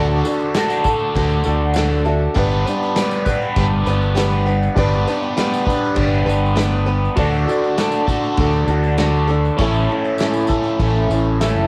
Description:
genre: folk rock and heartland rock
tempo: 100 BPM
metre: 4/4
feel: straight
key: unclear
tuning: A4 = 441 Hz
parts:
  - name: dark grand piano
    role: accompaniment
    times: 0.0-11.7 s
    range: C#4 to A5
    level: -32 LUFS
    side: equal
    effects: none
  - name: picked old ladder-braced acoustic guitar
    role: accompaniment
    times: 0.0-11.7 s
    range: A2 to B4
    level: -23 LUFS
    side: equal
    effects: cassette tape
  - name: crunchy overdriven guitar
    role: riff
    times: 0.0-11.7 s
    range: A2 to B4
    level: -24 LUFS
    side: equal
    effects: phaser, cassette tape
  - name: fingered electric bass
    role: bass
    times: 0.0-11.7 s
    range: F#1 to D2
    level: -21 LUFS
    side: equal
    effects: none
  - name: tambourine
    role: percussion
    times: 0.1-11.5 s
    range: none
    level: -42 LUFS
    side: equal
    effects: none
  - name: natural country drum kit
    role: drums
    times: 0.5-11.5 s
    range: crash cymbal, kick drum, snare drum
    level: -26 LUFS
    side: equal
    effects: none
room: light reverb, small room ambience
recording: home recording on cassette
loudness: -18 LUFS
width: mono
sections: 0.0-11.7 A section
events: grand piano fill 1.1-2.4, 11.1-11.7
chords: 0.0 D; 2.4 G; 7.2 D; 9.6 A

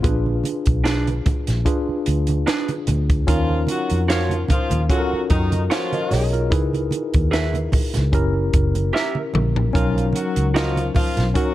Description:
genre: lush 1970s-style soul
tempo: 74 BPM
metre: 4/4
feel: swing 54% on 16ths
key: Bb phrygian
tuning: A4 = 439 Hz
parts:
  - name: tine electric piano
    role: accompaniment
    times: 0.0-11.5 s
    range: F#3 to Eb5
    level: -24 LUFS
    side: equal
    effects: overdrive, medium stereo tremolo
  - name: vintage muted fingered electric bass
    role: bass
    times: 0.0-11.3 s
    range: Gb1 to Gb2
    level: -21 LUFS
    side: equal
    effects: none
  - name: compact cocktail drum kit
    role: drums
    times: 0.0-11.5 s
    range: hi-hat, kick drum, snare drum, toms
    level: -22 LUFS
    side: equal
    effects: none
  - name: congas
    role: percussion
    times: 0.0-11.3 s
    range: none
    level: -28 LUFS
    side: right 2 dB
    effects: none
  - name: electric guitar through a small old amp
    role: riff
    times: 0.8-10.8 s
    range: D4 to F5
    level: -26 LUFS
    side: right 4 dB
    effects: none
  - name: warm horn section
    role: stabs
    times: 3.3-11.5 s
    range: Eb3 to Gb4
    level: -27 LUFS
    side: left 2 dB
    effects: none
room: little or no reverb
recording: dark, warm production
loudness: -18 LUFS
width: side -14 dB against mid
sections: 0.0-11.5 A section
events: drum fill 8.9-9.7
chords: 0.0 Bb7b9; 3.3 Ebm9; 6.5 Dbm7; 8.1 Gb7b9; 9.7 Bmaj7

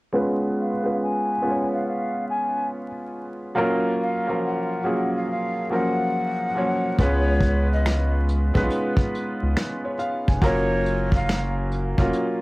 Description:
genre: lo-fi hip hop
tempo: 70 BPM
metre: 4/4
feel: swing 66% on 16ths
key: unclear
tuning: A4 = 441 Hz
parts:
  - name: felt-muted upright piano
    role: accompaniment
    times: 0.1-12.4 s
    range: E#3 to G#5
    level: -24 LUFS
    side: equal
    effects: cassette tape, low-pass filter
  - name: breathy mellow jazz flute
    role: melody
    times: 0.6-11.5 s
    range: C#5 to G#5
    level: -27 LUFS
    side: left 1 dB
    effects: low-pass filter, cassette tape, analog delay
  - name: round analog bass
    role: bass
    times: 7.0-12.1 s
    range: E#1 to C#2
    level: -23 LUFS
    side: equal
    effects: tube saturation
  - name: vintage brush drum kit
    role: drums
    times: 7.0-12.4 s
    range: finger snaps, hi-hat, kick drum, snare drum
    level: -22 LUFS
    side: equal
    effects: cassette tape
room: light reverb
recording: home recording on cassette, vinyl crackle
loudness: -21 LUFS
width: side -21 dB against mid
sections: 0.1-7.0 A section; 7.0-12.4 B section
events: filter sweep 0.1-7.0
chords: 0.1 C#7; 3.6 F#maj7; 7.0 C#7; 10.4 F#maj7

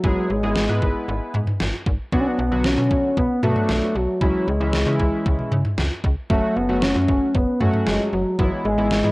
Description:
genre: synth-pop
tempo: 115 BPM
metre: 4/4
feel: straight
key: F# minor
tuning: A4 = 440 Hz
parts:
  - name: expressive synth lead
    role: melody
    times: 0.0-9.1 s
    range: F#3 to C#4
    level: -21 LUFS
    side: equal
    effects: chorus
  - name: warm analog keys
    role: accompaniment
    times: 0.0-9.1 s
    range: D3 to B4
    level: -26 LUFS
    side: equal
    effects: chorus, cassette tape
  - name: slap-like FM bass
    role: bass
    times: 0.0-9.1 s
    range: F#1 to C#3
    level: -24 LUFS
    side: equal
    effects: none
  - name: pop drum kit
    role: drums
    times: 0.0-9.0 s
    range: kick drum, snare drum, toms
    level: -23 LUFS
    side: equal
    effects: overdrive
room: moderate spring reverb, RT60 1.4 s, digital ambience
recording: home recording on cassette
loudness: -18 LUFS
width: side -22 dB against mid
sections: 0.0-9.1 A section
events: none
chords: 0.0 E/G#; 2.1 Bm; 4.2 C#m; 6.3 F#m; 8.4 E/G#

